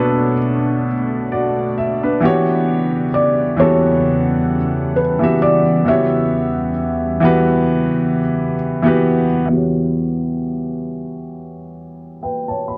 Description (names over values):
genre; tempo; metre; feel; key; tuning
lo-fi hip hop; 66 BPM; 4/4; swing 56% on 16ths; E dorian; A4 = 440 Hz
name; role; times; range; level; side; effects
felt-muted upright piano; melody; 0.0-8.6 s; A4 to E5; -22 LUFS; equal; low-pass filter, plate reverb
warm upright piano; accompaniment; 0.0-12.8 s; B2 to B5; -19 LUFS; equal; low-pass filter, plate reverb
deep dark ambient pad; sustained chords; 0.0-9.5 s; E2 to F#5; -25 LUFS; equal; chorus, built-in reverb, low-pass filter
room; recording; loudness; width
wet studio reverb, RT60 0.6 s; dark, warm production; -17 LUFS; mono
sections
0.0-9.5 A section; 9.5-12.8 B section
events
none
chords
0.0 Bm9; 2.2 Em69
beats
0.41 1.31 | 2.22 3.13 4.04 4.95 | 5.86 6.77 7.68 8.59 | 9.50 10.40 11.31 12.22